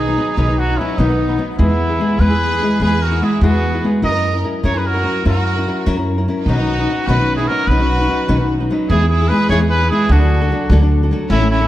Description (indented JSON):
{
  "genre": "mexican folk, mariachi",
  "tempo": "99 BPM (dotted quarters)",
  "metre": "6/8",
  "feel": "straight",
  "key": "B major",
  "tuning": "A4 = 440 Hz",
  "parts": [
    { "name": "clear trumpet", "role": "melody", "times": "0.0-11.7 s", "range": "D#4 to D#5", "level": "-20 LUFS", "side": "right 1 dB", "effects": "none" },
    { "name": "clear studio violin section", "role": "second line", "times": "0.0-11.7 s", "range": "B3 to A#4", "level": "-25 LUFS", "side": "right 2 dB", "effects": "none" },
    { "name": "nylon-string guitar", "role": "accompaniment", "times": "0.0-11.7 s", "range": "A2 to B4", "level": "-18 LUFS", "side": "left 2 dB", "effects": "none" },
    { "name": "upright bass", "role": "bass", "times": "0.0-11.7 s", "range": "A1 to F#2", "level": "-17 LUFS", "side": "equal", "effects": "none" }
  ],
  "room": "moderate concert hall reverb, RT60 2.1 s",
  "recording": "dark, warm production",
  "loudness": "-13 LUFS",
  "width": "side -14 dB against mid",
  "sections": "0.0-8.9 A section; 8.9-11.7 B section",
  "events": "none",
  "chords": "0.0 B; 1.6 E; 4.0 F#7; 6.5 Badd9; 8.9 E; 10.1 D",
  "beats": "| 0.37 0.98 | 1.58 2.19 | 2.81 3.42 | 4.03 4.65 | 5.26 5.86 | 6.47 7.07 | 7.68 8.29 | 8.90 9.51 | 10.11 10.71 | 11.31"
}